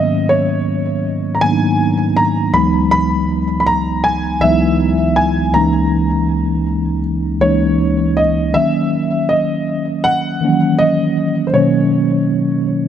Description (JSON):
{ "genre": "R&B", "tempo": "80 BPM", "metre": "4/4", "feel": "swing 54% on 16ths", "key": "C# dorian", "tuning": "A4 = 441 Hz", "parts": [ { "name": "dark grand piano", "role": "melody", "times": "0.0-12.9 s", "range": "B#4 to B5", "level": "-18 LUFS", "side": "equal", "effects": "digital delay" }, { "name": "mellow tine electric piano", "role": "accompaniment", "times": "0.0-12.9 s", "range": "C#2 to E4", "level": "-15 LUFS", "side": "equal", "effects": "medium stereo tremolo" } ], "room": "moderate lush hall reverb, RT60 3.1 s", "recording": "none", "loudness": "-13 LUFS", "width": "side -9 dB against mid", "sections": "0.0-12.9 A section", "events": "none", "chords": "0.0 G#m11; 2.5 C#m11; 5.5 C#m69; 8.5 D#m7; 11.5 Bmaj9", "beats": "0.30 1.05 1.80 | 2.55 3.30 4.05 4.80 | 5.55 6.30 7.05 7.80 | 8.55 9.30 10.05 10.80 | 11.55 12.30" }